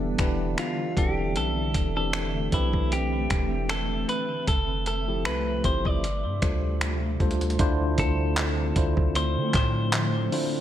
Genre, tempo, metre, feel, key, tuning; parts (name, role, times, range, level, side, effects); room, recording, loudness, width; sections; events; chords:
contemporary R&B; 77 BPM; 4/4; swing 54% on 16ths; D dorian; A4 = 443 Hz
tine electric piano; accompaniment; 0.0-10.6 s; D3 to E5; -30 LUFS; left 1 dB; medium stereo tremolo
granular cloud pad; sustained chords; 0.0-10.6 s; C3 to E5; -33 LUFS; equal; built-in reverb, sidechain pumping
long sustained 808-style bass; bass; 0.0-10.3 s; E1 to D3; -28 LUFS; equal
dusty soul sampler-style drum kit; drums; 0.2-10.5 s; finger snaps, handclaps, hi-hat, kick drum; -27 LUFS; equal
clean electric guitar; melody; 0.6-10.6 s; E4 to D5; -30 LUFS; equal; digital delay
light reverb; -23 LUFS; side -11 dB against mid
0.0-7.6 A section; 7.6-10.6 B section
0.0 Em7; 1.0 C69/E; 4.5 Fmaj7; 6.0 G9sus4; 7.6 Dm7